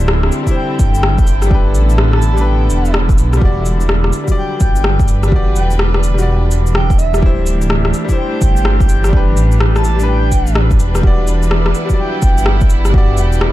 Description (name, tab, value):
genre	future garage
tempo	126 BPM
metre	4/4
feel	swing 63% on 16ths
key	E minor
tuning	A4 = 439 Hz
part	clear upright piano	accompaniment	0.0-13.5 s	F#3 to D5	-22 LUFS	left 3 dB	sidechain pumping, dub echo
part	dark studio string section	sustained chords	0.0-13.5 s	D3 to C5	-22 LUFS	right 1 dB	sidechain pumping
part	dark detuned saw bass	bass	0.0-13.5 s	D1 to B1	-14 LUFS	equal	sidechain pumping
part	electronic rim click, cabasa and shaker	drums	0.1-13.5 s	none	-20 LUFS	left 1 dB	overdrive
part	electronic kick drum	drums	0.5-13.1 s	none	-13 LUFS	equal	overdrive
part	breathy flute-like synth lead	melody	0.6-13.4 s	E5 to A5	-24 LUFS	equal	lush chorus, tape echo
room	little or no reverb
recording	dark, warm production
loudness	-11 LUFS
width	side -15 dB against mid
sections	0.0-13.5 A section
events	none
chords	0.0 D9sus4; 1.5 A9sus4; 3.4 Em9; 7.2 D9sus4; 9.1 A9sus4; 11.0 Em9